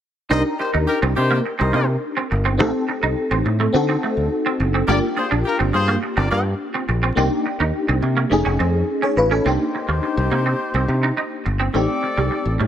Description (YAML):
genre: pop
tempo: 105 BPM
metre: 4/4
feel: straight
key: C minor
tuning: A4 = 438 Hz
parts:
  - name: clear horn section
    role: second line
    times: 0.3-12.6 s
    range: Eb4 to F5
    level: -24 LUFS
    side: left 2 dB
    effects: none
  - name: FM electric piano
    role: accompaniment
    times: 0.3-12.7 s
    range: Ab3 to C#5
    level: -22 LUFS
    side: left 1 dB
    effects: ensemble chorus
  - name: semi-hollow electric guitar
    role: riff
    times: 0.3-12.7 s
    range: G3 to Eb4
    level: -24 LUFS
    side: right 5 dB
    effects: ensemble chorus
  - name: fingered electric bass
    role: bass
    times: 0.3-12.7 s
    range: F1 to D3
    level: -20 LUFS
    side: equal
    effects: none
room: light reverb, digital ambience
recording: none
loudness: -17 LUFS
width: side -10 dB against mid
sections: 0.3-9.5 A section; 9.5-12.7 B section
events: none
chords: 0.3 Cm7; 2.6 Am7b5; 3.7 D7b9; 4.9 Gm7; 7.2 Cm9; 8.3 F7alt; 9.5 Cm7; 11.7 Am7b5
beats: | 0.31 0.88 1.45 2.02 | 2.60 3.17 3.74 4.31 | 4.88 5.45 6.03 6.60 | 7.17 7.74 8.31 8.88 | 9.46 10.03 10.60 11.17 | 11.75 12.32